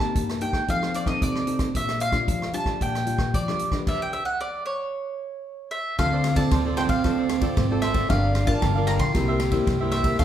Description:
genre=samba and choro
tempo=114 BPM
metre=4/4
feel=straight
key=D minor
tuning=A4 = 437 Hz
part: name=mandolin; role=melody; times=0.0-10.2 s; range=C#5 to C6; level=-27 LUFS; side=right 1 dB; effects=none
part: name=nylon-string guitar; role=accompaniment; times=0.0-10.2 s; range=G2 to B4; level=-28 LUFS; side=left 3 dB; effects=none
part: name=swinging big-band drum kit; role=drums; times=0.0-10.2 s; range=crash cymbal, hi-hat, kick drum, ride cymbal, rim click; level=-27 LUFS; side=equal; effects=none
part: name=breathy trombone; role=second line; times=6.0-10.2 s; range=C4 to A4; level=-27 LUFS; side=right 4 dB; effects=none
part: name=cavaquinho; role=accompaniment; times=6.0-10.2 s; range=D4 to F5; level=-31 LUFS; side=right 3 dB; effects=none
part: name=upright bass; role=bass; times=6.0-10.2 s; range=G1 to F2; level=-26 LUFS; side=equal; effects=none
room=wet large studio reverb, RT60 1.3 s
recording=heard from further back in the room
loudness=-21 LUFS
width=side -10 dB against mid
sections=0.0-6.0 A section; 6.0-10.2 B section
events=stop 3.9-6.0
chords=0.0 Cm7; 0.7 F7; 1.8 Bb6; 3.9 Dmaj7sus2; 4.9 N.C.; 6.0 Dm7; 8.1 Gm7; 9.1 C7

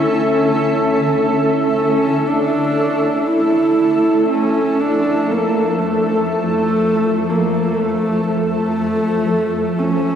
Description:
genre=ambient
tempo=60 BPM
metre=4/4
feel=straight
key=D harmonic minor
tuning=A4 = 439 Hz
part: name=dark horsehead fiddle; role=melody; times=0.0-10.2 s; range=A3 to E4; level=-17 LUFS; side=right 1 dB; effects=tape echo
part: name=granular cloud pad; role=sustained chords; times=0.0-10.2 s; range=D3 to E5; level=-17 LUFS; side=equal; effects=built-in reverb
room=wet huge ambient reverb, RT60 8.2 s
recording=dark, warm production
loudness=-14 LUFS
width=side -8 dB against mid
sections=0.0-2.3 A section; 2.3-10.2 A section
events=none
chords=0.0 A/D; 2.3 Dmadd9 (rootless)

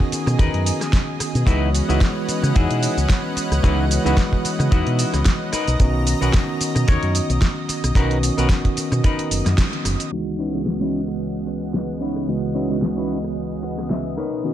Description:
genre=nu-disco, nu disco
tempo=111 BPM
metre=4/4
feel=swing 55% on 16ths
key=C# dorian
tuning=A4 = 439 Hz
part: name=tine electric piano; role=accompaniment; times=0.0-14.5 s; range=C#2 to D#5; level=-24 LUFS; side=right 1 dB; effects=medium stereo tremolo, sidechain pumping, dub echo
part: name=lush unison pad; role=sustained chords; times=0.0-14.5 s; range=B2 to A#5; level=-29 LUFS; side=right 1 dB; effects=chorus, sidechain pumping
part: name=semi-hollow electric guitar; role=riff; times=0.0-14.5 s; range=C#4 to F#5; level=-27 LUFS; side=left 3 dB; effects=wide subtle chorus, low-pass filter, dub echo
part: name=kick drum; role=drums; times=0.0-9.7 s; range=none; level=-17 LUFS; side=equal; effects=small room ambience
part: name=fingered electric bass with an envelope filter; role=bass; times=0.1-9.9 s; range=F#1 to C#3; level=-20 LUFS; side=equal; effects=none
part: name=pop drum kit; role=drums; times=0.1-14.3 s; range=hi-hat, rim click, shaker, snare drum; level=-27 LUFS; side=equal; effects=small room ambience
room=light reverb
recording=low-pass filter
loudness=-18 LUFS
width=side -12 dB against mid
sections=0.0-10.1 A section; 10.1-14.5 B section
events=band accent 9.6; filter sweep on clean electric guitar 10.1-14.5; filter sweep 10.1-14.5; clean electric guitar fill 13.4-14.4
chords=0.0 Bmaj7; 1.5 C#m11; 5.5 Bmaj7; 10.1 C#m11

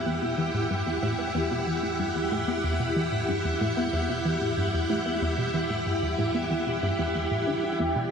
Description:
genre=ambient, sequencer-driven space music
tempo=93 BPM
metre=4/4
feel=straight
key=E minor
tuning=A4 = 444 Hz
part: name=string machine, full ensemble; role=sustained chords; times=0.0-8.1 s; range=E4 to F#5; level=-27 LUFS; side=equal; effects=ensemble chorus
part: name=warm sub bass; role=bass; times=0.0-8.1 s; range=E2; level=-42 LUFS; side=equal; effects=none
part: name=bubbling stepped-filter texture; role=texture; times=0.0-8.1 s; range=G4 to E5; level=-36 LUFS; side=equal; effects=chorus, built-in reverb
part: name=plucky analog bass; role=riff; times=0.1-8.1 s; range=E2 to B3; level=-29 LUFS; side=equal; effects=analog chorus, ping-pong delay
part: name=mellow horn-like synth lead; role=melody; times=7.8-8.1 s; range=G5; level=-31 LUFS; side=right 3 dB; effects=wide subtle chorus
room=wet plate reverb, RT60 3.6 s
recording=dreamy mix soaked in reverb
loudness=-25 LUFS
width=side -6 dB against mid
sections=0.0-8.1 A section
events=filter sweep on analog synth bass 0.0-8.1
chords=0.0 Em7

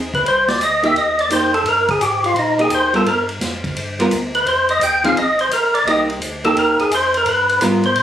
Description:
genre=soul jazz organ trio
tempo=171 BPM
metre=4/4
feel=swing 65% on 8ths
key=C minor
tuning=A4 = 440 Hz
part: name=tonewheel organ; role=bass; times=0.0-8.0 s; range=Ab1 to Bb2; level=-31 LUFS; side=equal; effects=chorus vibrato, slow rotary speaker
part: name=percussive tonewheel organ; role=melody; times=0.1-8.0 s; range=Eb4 to G5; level=-15 LUFS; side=equal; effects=slow rotary speaker, overdrive
part: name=vintage drum kit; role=drums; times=0.1-8.0 s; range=hi-hat, kick drum, ride cymbal, snare drum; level=-25 LUFS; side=left 1 dB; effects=none
part: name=archtop guitar, miked and amplified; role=accompaniment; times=0.8-7.8 s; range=F3 to Bb4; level=-18 LUFS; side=right 1 dB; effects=none
room=moderate studio reverb, RT60 0.8 s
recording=recorded on a phone in the room, studio reverb, compression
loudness=-14 LUFS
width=side -10 dB against mid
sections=0.0-8.0 A section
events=tonewheel organ solo 0.0-8.0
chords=0.3 Cm7; 3.1 G7(no3); 4.5 Fm7; 5.9 Cm7; 7.3 G7#9

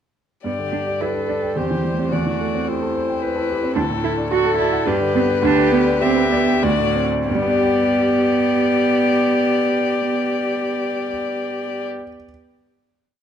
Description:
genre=quick classical-period movement for piano quartet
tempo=90-112 BPM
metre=3/4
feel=rubato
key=G major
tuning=A4 = 441 Hz
part: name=warm violin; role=melody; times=0.4-11.8 s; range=A4 to E5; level=-22 LUFS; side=left 8 dB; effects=none
part: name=clear baby grand piano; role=accompaniment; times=0.4-12.3 s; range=D2 to G5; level=-23 LUFS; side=equal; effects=none
part: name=warm viola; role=accompaniment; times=0.4-11.8 s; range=E4 to A4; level=-24 LUFS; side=right 2 dB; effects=none
part: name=dark cello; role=second line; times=0.5-11.8 s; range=A3 to F#4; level=-22 LUFS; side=right 5 dB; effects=none
room=moderate recital hall reverb, RT60 1.4 s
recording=dark, warm production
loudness=-17 LUFS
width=side -9 dB against mid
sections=0.4-7.3 A section; 7.3-11.1 final chord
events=slowing down 3.0-7.3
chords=0.4 G; 1.6 C/E; 2.1 Am7/E; 3.8 D; 4.9 G; 5.4 G/D; 6.6 D7; 7.3 G

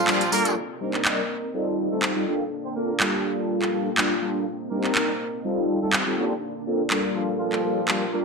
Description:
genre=filtered disco house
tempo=123 BPM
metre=4/4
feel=swing 53% on 16ths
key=G minor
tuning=A4 = 439 Hz
part: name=clear horn section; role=melody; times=0.0-8.2 s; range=F3 to C5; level=-29 LUFS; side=right 1 dB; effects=low-pass filter
part: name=string machine, full ensemble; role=sustained chords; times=0.0-8.2 s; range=Bb3 to A5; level=-31 LUFS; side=equal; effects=ensemble chorus, low-pass filter
part: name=mellow synth brass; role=accompaniment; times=0.1-8.2 s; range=G3 to Bb4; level=-25 LUFS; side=equal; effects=chorus, phaser, low-pass filter
part: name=house drum kit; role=drums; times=0.1-8.0 s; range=handclaps, hi-hat, tambourine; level=-24 LUFS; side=right 1 dB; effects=gated reverb
part: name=tambourine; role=percussion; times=0.1-0.5 s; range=none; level=-45 LUFS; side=left 3 dB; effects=none
room=wet plate reverb, RT60 1.2 s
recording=bright 1980s-style digital production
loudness=-22 LUFS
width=side -4 dB against mid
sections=0.6-8.2 A section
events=band accent 0.1; filter sweep 0.6-8.2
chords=0.0 Gm7; 0.6 Cm7; 1.5 F7; 2.3 Bbmaj7; 3.2 Gm7; 4.5 Cm7; 5.4 F7; 6.2 Bbmaj7; 7.2 Gm7

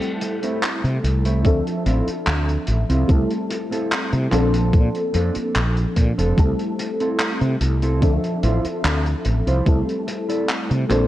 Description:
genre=vaporwave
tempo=73 BPM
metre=4/4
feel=straight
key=C mixolydian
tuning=A4 = 440 Hz
part: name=mellow FM electric piano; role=accompaniment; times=0.0-11.1 s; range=F3 to E5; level=-23 LUFS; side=left 1 dB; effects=ensemble chorus, tape echo
part: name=cloth-damped thuddy drum kit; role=drums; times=0.0-11.1 s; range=handclaps, hi-hat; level=-27 LUFS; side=equal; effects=gated reverb
part: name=mellow electric guitar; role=riff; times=0.2-11.1 s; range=A3 to D5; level=-28 LUFS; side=right 2 dB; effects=analog chorus, low-pass filter, tape echo
part: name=mellow fretless electric bass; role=bass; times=0.8-11.1 s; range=F1 to C3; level=-20 LUFS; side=equal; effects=none
part: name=electronic kick drum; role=drums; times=1.4-9.8 s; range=none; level=-17 LUFS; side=equal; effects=none
room=light reverb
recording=cassette tape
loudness=-18 LUFS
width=side -14 dB against mid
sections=0.0-11.1 A section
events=none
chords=0.0 C6; 1.4 Dm9; 3.1 C6; 4.3 Bbmaj9; 6.4 C6; 8.0 Dm9; 9.7 C6

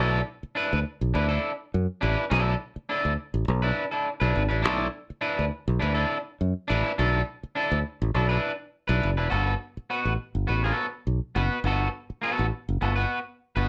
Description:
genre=funk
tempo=103 BPM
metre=4/4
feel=straight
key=B minor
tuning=A4 = 438 Hz
part: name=electric guitar at the edge of break-up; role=accompaniment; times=0.0-13.7 s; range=B3 to B4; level=-29 LUFS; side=equal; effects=warbly pitch drift
part: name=fingered electric bass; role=bass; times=0.0-13.7 s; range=E1 to F#2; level=-27 LUFS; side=equal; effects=none
room=light reverb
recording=none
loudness=-27 LUFS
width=mono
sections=0.0-9.3 A section; 9.3-13.7 B section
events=none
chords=0.0 Bm7; 9.3 Gmaj9

